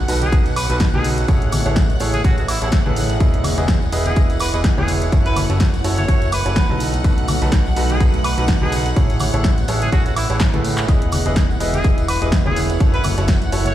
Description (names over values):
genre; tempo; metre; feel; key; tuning
piano house; 125 BPM; 4/4; swing 56% on 16ths; E major; A4 = 440 Hz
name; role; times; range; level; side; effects
string machine, violins; sustained chords; 0.0-13.7 s; F#5 to F#6; -30 LUFS; equal; ensemble chorus, sidechain pumping
fat analog bass; bass; 0.0-13.7 s; E1 to A2; -21 LUFS; equal; sidechain pumping
deep dark ambient pad; texture; 0.0-13.7 s; A3 to A5; -29 LUFS; right 2 dB; chorus, built-in reverb, sidechain pumping
clear grand piano; riff; 0.1-13.7 s; D#4 to D#5; -25 LUFS; right 2 dB; sidechain pumping, ping-pong delay
punchy analog drum machine; drums; 0.1-13.7 s; handclaps, hi-hat, snare drum, woodblock; -25 LUFS; equal; overdrive, studio reverb
tambourine and congas; percussion; 0.1-13.7 s; none; -28 LUFS; left 4 dB; none
clear trumpet; melody; 0.2-13.7 s; E4 to C#5; -26 LUFS; equal; ping-pong delay
electronic kick drum; drums; 0.3-13.4 s; none; -17 LUFS; equal; studio reverb
room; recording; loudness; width
digital ambience; played on a big sound system in a bare room, large studio reverb; -15 LUFS; side -12 dB against mid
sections
0.0-13.7 A section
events
drum fill 10.4-10.9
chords
0.0 B7; 1.3 Amaj7; 3.2 Emaj7; 5.1 F#m7; 6.8 B7; 9.0 Amaj7; 10.9 Emaj7; 12.8 F#m7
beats
0.33 0.81 | 1.28 1.76 2.25 2.73 | 3.21 3.69 4.17 4.64 | 5.12 5.61 6.08 6.57 | 7.04 7.53 8.01 8.48 | 8.96 9.45 9.93 10.40 | 10.88 11.37 11.85 12.32 | 12.80 13.29